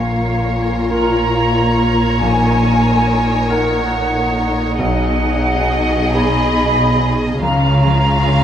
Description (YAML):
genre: cinematic, emotional film score for orchestra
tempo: 46 BPM (dotted quarters)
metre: 6/8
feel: rubato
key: G# dorian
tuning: A4 = 440 Hz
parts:
  - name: rich studio violin section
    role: melody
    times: 0.0-8.4 s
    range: C#5 to E#5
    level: -24 LUFS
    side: equal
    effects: none
  - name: bright small flute group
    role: second line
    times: 0.0-8.4 s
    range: E#5 to B5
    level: -19 LUFS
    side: right 1 dB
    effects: none
  - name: rich studio violin section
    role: second line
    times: 0.0-8.4 s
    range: E#4 to A#4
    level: -25 LUFS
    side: left 2 dB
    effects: none
  - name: bright concert grand piano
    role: accompaniment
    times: 0.0-8.4 s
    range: A#1 to A#4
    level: -21 LUFS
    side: equal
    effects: none
  - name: warm chamber viola section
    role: accompaniment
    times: 0.0-8.4 s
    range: C#4 to E#4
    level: -23 LUFS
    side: left 1 dB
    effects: none
  - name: concert harp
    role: arpeggios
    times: 0.0-8.4 s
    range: A#2 to E#5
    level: -26 LUFS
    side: left 6 dB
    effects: none
  - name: rich studio cello section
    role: bass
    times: 0.0-8.4 s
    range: A#2 to C#3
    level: -20 LUFS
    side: equal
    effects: none
  - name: warm studio double bass section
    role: bass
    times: 0.0-8.4 s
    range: A#1 to C#2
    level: -21 LUFS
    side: right 1 dB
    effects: none
room: wet stone room reverb, RT60 1.2 s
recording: none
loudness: -13 LUFS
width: side -9 dB against mid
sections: 0.0-8.4 A section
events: none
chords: 0.0 A#m; 2.2 D#m7/A#; 4.8 G#m7/B; 7.4 C#